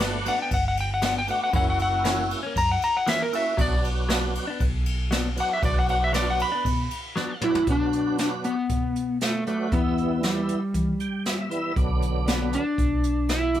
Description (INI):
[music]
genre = straight-eighth soul blues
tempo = 117 BPM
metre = 4/4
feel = straight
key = B minor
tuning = A4 = 442 Hz
[part]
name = tonewheel organ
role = accompaniment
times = 0.0-13.6 s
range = D3 to G5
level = -30 LUFS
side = right 3 dB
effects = slow rotary speaker, overdrive, chorus vibrato
[part]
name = direct-recorded clean electric guitar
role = stabs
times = 0.0-7.3 s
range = E3 to D4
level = -30 LUFS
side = left 2 dB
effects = phaser
[part]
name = vintage muted fingered electric bass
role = bass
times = 0.0-13.6 s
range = F#1 to E3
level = -28 LUFS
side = equal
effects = none
[part]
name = jazz brush drum kit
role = drums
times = 0.0-13.6 s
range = hi-hat, kick drum, ride cymbal, snare drum, toms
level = -28 LUFS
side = equal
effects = none
[part]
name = electric slide guitar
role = melody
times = 0.3-13.6 s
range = G3 to B5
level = -25 LUFS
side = left 1 dB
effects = none
[sound]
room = moderate studio ambience, RT60 0.5 s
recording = band playing live in one room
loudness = -22 LUFS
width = side -11 dB against mid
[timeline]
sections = 0.0-7.7 A section; 7.7-13.6 B section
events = electric slide guitar solo 0.0-7.7; drum fill 7.2-7.7; tonewheel organ fill 10.7-11.8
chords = 0.0 Gmaj7; 1.5 F#7; 3.6 Bm; 9.7 Em; 11.8 Bm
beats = 0.00 0.51 1.03 | 1.54 2.05 2.56 3.07 | 3.58 4.10 4.61 5.12 | 5.63 6.14 6.65 7.17 | 7.68 8.19 8.70 9.21 | 9.72 10.23 10.74 11.26 | 11.77 12.28 12.79 13.30